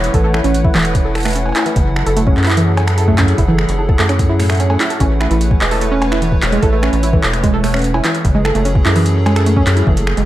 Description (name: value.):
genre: IDM.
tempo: 148 BPM.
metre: 4/4.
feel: straight.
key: A major.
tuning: A4 = 440 Hz.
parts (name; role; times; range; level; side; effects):
hollow soft pad; sustained chords; 0.0-10.3 s; F#3 to F#5; -21 LUFS; left 1 dB; chorus.
rubbery square bass; bass; 0.0-10.3 s; E1 to F#2; -16 LUFS; equal; none.
electro analog drum machine; drums; 0.0-10.3 s; cowbell, finger snaps, handclaps, hi-hat; -20 LUFS; equal; overdrive.
warbly dusty pluck; arpeggios; 0.1-10.2 s; A2 to A4; -18 LUFS; right 2 dB; chorus, tape echo.
electronic kick drum; drums; 0.1-9.9 s; none; -15 LUFS; equal; overdrive.
room: light reverb.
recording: none.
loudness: -12 LUFS.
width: side -14 dB against mid.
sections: 0.0-10.3 A section.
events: none.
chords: 0.0 A6; 1.8 F#m7; 5.0 A6; 8.2 F#m7.